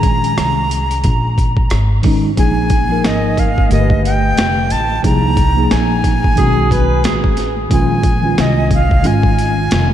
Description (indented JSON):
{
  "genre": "hip hop, jazz-hop",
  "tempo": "90 BPM",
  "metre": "4/4",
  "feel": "swing 58% on 16ths",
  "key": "Bb minor",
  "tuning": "A4 = 440 Hz",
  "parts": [
    { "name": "breathy bright jazz flute", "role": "melody", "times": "0.0-9.9 s", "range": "Eb5 to Bb5", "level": "-19 LUFS", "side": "right 1 dB", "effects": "diffuse ambient delay" },
    { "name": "mellow tine electric piano", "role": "accompaniment", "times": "0.0-9.9 s", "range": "D3 to B4", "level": "-18 LUFS", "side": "equal", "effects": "medium stereo tremolo" },
    { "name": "upright bass", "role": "bass", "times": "0.0-9.9 s", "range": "F1 to C2", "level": "-17 LUFS", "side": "equal", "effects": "none" },
    { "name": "boom bap sampler-style drum kit", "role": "drums", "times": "0.0-9.9 s", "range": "hi-hat, kick drum, rim click, snare drum", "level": "-17 LUFS", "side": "equal", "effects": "none" },
    { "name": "breathy tenor saxophone", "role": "second line", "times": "6.4-7.6 s", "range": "G#4 to B4", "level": "-23 LUFS", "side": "right 2 dB", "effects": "none" }
  ],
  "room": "moderate cathedral reverb, RT60 5.0 s",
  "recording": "dreamy mix soaked in reverb",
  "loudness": "-12 LUFS",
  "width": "side -11 dB against mid",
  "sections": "0.0-2.4 A section; 2.4-9.9 B section",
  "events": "none",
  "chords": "0.0 Bbm9; 2.4 Bb5; 3.7 G7; 5.0 Bb9sus4; 6.4 B13; 7.7 Bbm9"
}